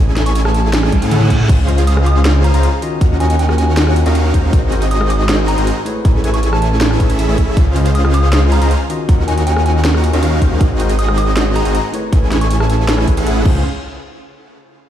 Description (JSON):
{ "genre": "future bass", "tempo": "158 BPM", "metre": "4/4", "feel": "half-time", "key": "Db major", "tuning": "A4 = 439 Hz", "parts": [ { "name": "supersaw chords", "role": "riff", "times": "0.0-13.6 s", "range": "C4 to G#5", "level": "-20 LUFS", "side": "right 1 dB", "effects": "sidechain pumping, digital delay" }, { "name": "wide detuned saw bass", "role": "bass", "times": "0.0-13.6 s", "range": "Ab1 to A2", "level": "-14 LUFS", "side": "equal", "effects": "chorus, sidechain pumping" }, { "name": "trap drum kit", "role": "drums", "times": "0.2-13.5 s", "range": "crash cymbal, hi-hat, rim click, snare drum, toms", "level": "-21 LUFS", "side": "right 1 dB", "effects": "none" }, { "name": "soft synth bell", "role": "melody", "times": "0.3-12.9 s", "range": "Ab5 to Eb6", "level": "-24 LUFS", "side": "equal", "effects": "chorus, vintage 12-bit sampler grit, sidechain pumping, ping-pong delay" }, { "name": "reverse cymbal", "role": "sound effects", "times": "0.9-1.5 s", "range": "none", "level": "-27 LUFS", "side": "right 1 dB", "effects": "none" }, { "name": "electronic kick drum", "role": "drums", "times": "0.9-13.5 s", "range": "none", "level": "-12 LUFS", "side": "equal", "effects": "none" }, { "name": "tine electric piano", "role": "accompaniment", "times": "1.7-13.6 s", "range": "Db3 to Eb5", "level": "-22 LUFS", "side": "left 3 dB", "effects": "medium tremolo, sidechain pumping, digital delay" } ], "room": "little or no reverb", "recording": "played on a big sound system in a bare room, stone room reverb", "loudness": "-11 LUFS", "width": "side -11 dB against mid", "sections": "0.0-13.6 A section; 13.6-14.9 B section", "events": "drop 0.0-13.6; drum fill 0.9-1.5; reverse cymbal 0.9-1.5", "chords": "0.0 Amaj7; 1.5 Dbmaj7; 3.0 Ebm7; 4.5 Ab7; 6.0 Amaj7; 7.6 Dbmaj7; 9.1 Ebm7; 10.6 Ab7; 12.1 Amaj7; 13.5 Dbmaj7; 13.6 N.C.", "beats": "0.35 0.73 1.11 | 1.49 1.87 2.25 2.63 | 3.01 3.39 3.77 4.15 | 4.53 4.91 5.29 5.67 | 6.05 6.43 6.81 7.19 | 7.57 7.95 8.33 8.71 | 9.09 9.47 9.85 10.23 | 10.61 10.99 11.37 11.75 | 12.13 12.51 12.89 13.27" }